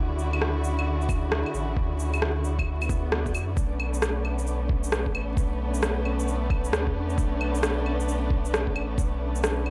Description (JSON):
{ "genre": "future garage", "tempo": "133 BPM", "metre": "4/4", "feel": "swing 63% on 16ths", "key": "B minor", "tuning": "A4 = 440 Hz", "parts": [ { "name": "dark studio string section", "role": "sustained chords", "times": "0.0-9.7 s", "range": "C#3 to F#4", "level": "-33 LUFS", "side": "equal", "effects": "sidechain pumping" }, { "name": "warm sub bass", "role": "bass", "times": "0.0-9.7 s", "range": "A1 to F#2", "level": "-30 LUFS", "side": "equal", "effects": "sidechain pumping" }, { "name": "backwards swelling texture", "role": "texture", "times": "0.0-3.6 s", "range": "D5", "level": "-49 LUFS", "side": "equal", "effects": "none" }, { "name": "electronic shaker, claves and rim click", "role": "drums", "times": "0.2-9.7 s", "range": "none", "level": "-32 LUFS", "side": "equal", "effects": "overdrive" }, { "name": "electronic kick drum", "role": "drums", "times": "1.1-9.1 s", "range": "none", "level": "-30 LUFS", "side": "equal", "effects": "overdrive" }, { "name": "swell", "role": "sound effects", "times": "2.8-3.6 s", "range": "none", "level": "-41 LUFS", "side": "equal", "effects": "none" } ], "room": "little or no reverb", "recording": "dry, gritty hardware recording, vinyl crackle", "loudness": "-27 LUFS", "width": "mono", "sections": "0.0-3.6 A section; 3.6-9.7 B section", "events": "swell 2.8-3.6; band accent 3.1", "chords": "0.0 Dmaj9; 3.6 Bm9" }